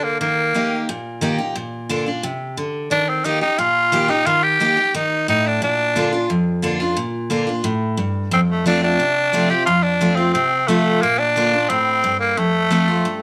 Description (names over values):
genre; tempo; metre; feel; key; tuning
rock; 178 BPM; 4/4; straight; Bb major; A4 = 440 Hz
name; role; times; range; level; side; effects
growling tenor saxophone; melody; 0.0-0.8, 2.9-6.3, 8.3-13.2 s; A3 to G4; -20 LUFS; equal; none
picked steel-string acoustic guitar; accompaniment; 0.0-13.2 s; F2 to G4; -22 LUFS; equal; none
room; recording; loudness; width
light reverb; none; -19 LUFS; mono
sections
0.0-13.2 A section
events
none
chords
0.2 Eb; 1.6 Bb; 2.9 Eb; 5.6 Bb; 8.3 F; 11.0 Bb; 12.4 F